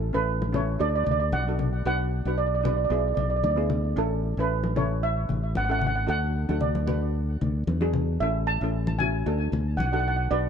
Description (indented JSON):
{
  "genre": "calypso",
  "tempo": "114 BPM",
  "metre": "4/4",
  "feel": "straight",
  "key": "A major",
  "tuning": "A4 = 445 Hz",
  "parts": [
    { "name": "steel pan", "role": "melody", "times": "0.0-10.5 s", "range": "A4 to A5", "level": "-28 LUFS", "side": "right 3 dB", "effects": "digital delay" },
    { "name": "modern bright fingered electric bass", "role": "bass", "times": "0.0-10.5 s", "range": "G#1 to E2", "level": "-26 LUFS", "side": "equal", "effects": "none" },
    { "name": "steel pan", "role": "accompaniment", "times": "0.1-10.5 s", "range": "B3 to B4", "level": "-32 LUFS", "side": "left 1 dB", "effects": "none" },
    { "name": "congas", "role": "percussion", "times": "0.4-9.9 s", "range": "none", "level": "-32 LUFS", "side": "left 4 dB", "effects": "none" }
  ],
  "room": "light reverb",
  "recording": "dark, warm production",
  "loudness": "-23 LUFS",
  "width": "side -7 dB against mid",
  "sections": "0.0-10.5 A section",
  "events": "none",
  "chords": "0.0 A; 0.8 D6; 1.9 Bm; 2.9 E7/B; 4.0 Amaj7; 6.1 D6; 8.2 A; 9.3 D6",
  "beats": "0.27 0.80 1.32 | 1.85 2.38 2.91 3.44 | 3.97 4.50 5.03 5.55 | 6.08 6.61 7.14 7.67 | 8.20 8.73 9.26 9.79 | 10.31"
}